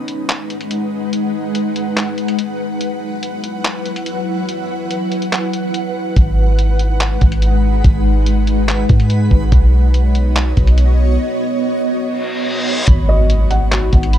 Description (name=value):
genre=hip hop, atmospheric cloud-rap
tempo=143 BPM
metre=4/4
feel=half-time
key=G# minor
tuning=A4 = 442 Hz
part: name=ethereal airy pad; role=sustained chords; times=0.0-14.2 s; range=F#3 to F#5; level=-20 LUFS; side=equal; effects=ensemble chorus, built-in reverb, tremolo, sidechain pumping
part: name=lo-fi sampler-style drum kit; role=drums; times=0.1-14.2 s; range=handclaps, hi-hat, kick drum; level=-16 LUFS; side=equal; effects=none
part: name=soft 808-style bass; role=bass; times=6.2-14.2 s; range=G#1 to G#2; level=-13 LUFS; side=equal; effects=none
part: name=backwards swelling texture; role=texture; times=7.6-12.8 s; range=G#3 to C#5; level=-29 LUFS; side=right 2 dB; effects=built-in reverb
part: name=reverse cymbal and impact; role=sound effects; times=12.2-14.2 s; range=none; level=-22 LUFS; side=equal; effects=none
part: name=warbly lo-fi synth keys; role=arpeggios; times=12.9-14.2 s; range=B3 to B5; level=-29 LUFS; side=left 2 dB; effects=chorus, low-pass filter, digital delay
part: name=felt-muted upright piano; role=melody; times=13.1-14.2 s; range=D#5 to F#5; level=-22 LUFS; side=right 1 dB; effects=low-pass filter, digital delay
room=little or no reverb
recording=dark, warm production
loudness=-13 LUFS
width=side -11 dB against mid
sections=0.0-12.9 A section; 12.9-14.2 B section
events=break 0.0-6.2, 11.2-12.9; reverse cymbal 12.2-12.9; impact 12.9-14.2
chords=0.0 G#m7; 2.8 F#7sus4; 6.2 G#m7; 9.5 Badd9; 12.9 G#m7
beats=0.29 0.71 | 1.13 1.55 1.97 2.39 | 2.81 3.23 3.65 4.07 | 4.49 4.91 5.33 5.75 | 6.17 6.58 7.00 7.42 | 7.84 8.26 8.68 9.10 | 9.52 9.94 10.36 10.78 | 11.20 11.62 12.04 12.46 | 12.88 13.30 13.72 14.14